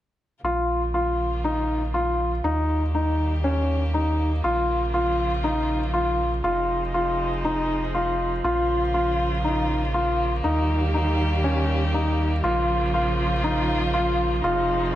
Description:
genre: electronica.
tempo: 120 BPM.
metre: 4/4.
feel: straight.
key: Bb dorian.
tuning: A4 = 440 Hz.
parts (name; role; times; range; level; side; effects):
warm string quartet; sustained chords; 0.4-15.0 s; C3 to G4; -28 LUFS; right 1 dB; none.
felt-muted upright piano; riff; 0.4-14.8 s; Db4 to F4; -24 LUFS; left 1 dB; low-pass filter, tape echo.
warm sub bass; bass; 0.4-15.0 s; F1 to Eb2; -26 LUFS; equal; none.
room: wet echo chamber reverb, RT60 1.8 s, small room ambience.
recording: none.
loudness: -21 LUFS.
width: side -13 dB against mid.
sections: 0.4-15.0 A section.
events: fade-in on string quartet 0.4-15.0.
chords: 0.4 Bbm; 2.4 Eb; 4.4 Bbm; 6.4 Fm7; 8.4 Bbm; 10.4 Eb; 12.4 Bbm; 14.4 Fm7.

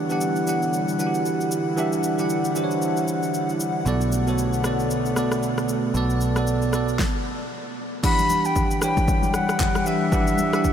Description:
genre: amapiano.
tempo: 115 BPM.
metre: 4/4.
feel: swing 58% on 16ths.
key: unclear.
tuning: A4 = 440 Hz.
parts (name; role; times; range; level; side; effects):
bell-like tine electric piano; accompaniment; 0.0-10.7 s; B2 to F#5; -24 LUFS; right 2 dB; wide subtle chorus.
airy breathy pad; sustained chords; 0.0-10.7 s; D3 to F#5; -28 LUFS; left 2 dB; chorus.
deep house drum kit; drums; 0.1-10.7 s; crash cymbal, handclaps, kick drum, rim click, shaker, snare drum; -27 LUFS; equal; none.
fingered electric bass; bass; 3.9-7.0 s; B1; -27 LUFS; equal; none.
concert flute; melody; 8.0-10.7 s; E5 to B5; -23 LUFS; left 2 dB; tape echo.
congas; percussion; 8.2-10.7 s; none; -32 LUFS; left 6 dB; none.
room: wet huge ambient reverb, RT60 8.0 s.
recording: dreamy mix soaked in reverb.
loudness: -20 LUFS.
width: side -9 dB against mid.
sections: 0.0-8.0 A section; 8.0-10.7 B section.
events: stop 7.0-8.0.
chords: 0.0 Em9; 3.9 Bm7; 8.0 Em9.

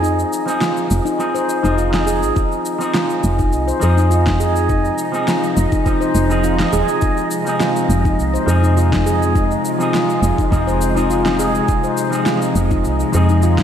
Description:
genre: organic downtempo.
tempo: 103 BPM.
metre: 4/4.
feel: straight.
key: F minor.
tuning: A4 = 439 Hz.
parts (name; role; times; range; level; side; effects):
electric guitar with an envelope filter; accompaniment; 0.0-13.6 s; F3 to Ab4; -22 LUFS; equal; vintage 12-bit sampler grit, sidechain pumping, digital delay, slapback echo.
handpan; arpeggios; 0.0-13.6 s; Eb4 to C5; -20 LUFS; left 1 dB; digital delay, slapback echo.
woody FM bass; bass; 0.0-13.6 s; Eb1 to F2; -17 LUFS; equal; sidechain pumping.
electronic cabasa and snare drum; drums; 0.0-13.6 s; none; -25 LUFS; left 1 dB; slapback echo.
wind-like tuned noise texture; texture; 0.0-13.6 s; Eb5; -28 LUFS; right 4 dB; built-in reverb.
bowed-like drone; sustained chords; 3.8-13.6 s; C3 to F4; -22 LUFS; left 1 dB; built-in reverb, sidechain pumping.
electronic kick drum; drums; 2.4-13.6 s; none; -19 LUFS; equal; none.
room: wet scoring stage reverb, RT60 2.1 s.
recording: big arena sound.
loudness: -14 LUFS.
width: side -9 dB against mid.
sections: 0.0-13.6 A section.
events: break 0.0-2.4.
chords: 0.0 Fm7.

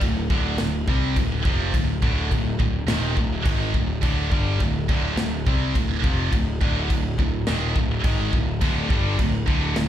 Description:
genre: heavy metal.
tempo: 105 BPM.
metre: 4/4.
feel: straight.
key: D phrygian.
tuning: A4 = 442 Hz.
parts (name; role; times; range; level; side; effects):
heavy high-gain guitar; riff; 0.0-9.9 s; D2 to C4; -29 LUFS; left 11 dB; distortion, slapback echo.
heavy high-gain guitar; riff; 0.0-9.9 s; D2 to C4; -28 LUFS; right 12 dB; distortion, slapback echo.
fuzz picked electric bass; bass; 0.0-9.9 s; D1 to C2; -25 LUFS; equal; overdrive.
modern studio drum kit; drums; 0.0-9.9 s; crash cymbal, kick drum, snare drum; -24 LUFS; equal; none.
scooped high-gain guitar; riff; 8.6-9.9 s; D2 to G3; -28 LUFS; equal; distortion.
room: small room reverb.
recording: live gig heard through the venue's PA, club reverb.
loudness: -20 LUFS.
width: side -11 dB against mid.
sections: 0.0-9.9 A section.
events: none.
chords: 0.0 Dm.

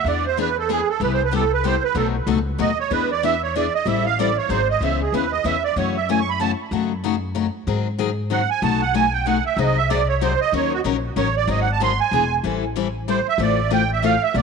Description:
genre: acoustic string swing (jazz manouche).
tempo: 189 BPM.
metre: 3/4.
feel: swing 59% on 8ths.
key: C# minor from 4.8 s.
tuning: A4 = 440 Hz.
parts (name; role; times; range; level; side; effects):
musette accordion; melody; 0.0-14.4 s; F#4 to C#6; -21 LUFS; right 10 dB; tape echo.
upright bass; bass; 0.0-14.4 s; E1 to G#2; -25 LUFS; left 1 dB; none.
picked steel-string acoustic guitar; accompaniment; 0.1-14.4 s; B2 to B#4; -23 LUFS; left 12 dB; none.
room: moderate echo chamber reverb, RT60 2.1 s.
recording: 1960s-style stereo with parts hard left and right.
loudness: -18 LUFS.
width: side -5 dB against mid.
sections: 0.0-4.8 A section; 4.8-12.4 A section; 12.4-14.4 A section.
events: accordion solo 0.0-12.4, 12.4-14.4.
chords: 0.1 E7; 1.0 Cmaj7; 2.0 B7; 2.9 E7; 3.9 Am7; 4.5 G#7; 4.8 C#m7; 5.8 F#m7; 6.7 D#m7b5/F#; 7.7 G#7; 8.6 B7; 9.6 G#7/B#; 10.5 D#m7; 11.5 G#7; 12.1 E7; 12.4 Am7; 13.4 Fmaj7/A.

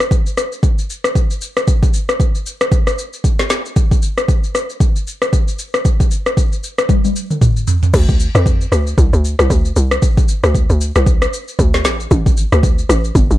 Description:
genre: amapiano.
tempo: 115 BPM.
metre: 4/4.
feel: swing 58% on 16ths.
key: D minor.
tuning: A4 = 440 Hz.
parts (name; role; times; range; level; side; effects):
afro-pop drum kit; drums; 0.0-13.4 s; crash cymbal, kick drum, rim click, shaker, snare drum, toms; -13 LUFS; equal; overdrive.
tight log drum bass; bass; 7.9-13.4 s; G1 to F2; -14 LUFS; equal; none.
room: little or no reverb.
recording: dark, warm production.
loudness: -13 LUFS.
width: side -15 dB against mid.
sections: 0.0-7.9 A section; 7.9-13.4 B section.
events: drum fill 6.9-7.9; drop 7.9-13.4.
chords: none.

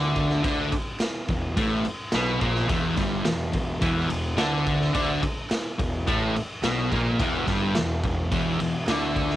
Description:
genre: garage rock duo or trio.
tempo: 107 BPM.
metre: 4/4.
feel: straight.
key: E minor.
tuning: A4 = 440 Hz.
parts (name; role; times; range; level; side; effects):
fuzz guitar; riff; 0.0-9.4 s; E2 to D4; -24 LUFS; equal; distortion, cassette tape.
fuzz picked electric bass; bass; 0.0-9.4 s; E1 to D2; -30 LUFS; equal; overdrive.
raw garage drum kit; drums; 0.2-9.4 s; kick drum, ride cymbal, snare drum; -28 LUFS; equal; none.
group handclap; percussion; 0.7-9.0 s; none; -42 LUFS; right 8 dB; none.
room: little or no reverb.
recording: home recording on cassette.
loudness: -22 LUFS.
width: side -14 dB against mid.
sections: 0.0-9.4 A section.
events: none.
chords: 0.0 Em.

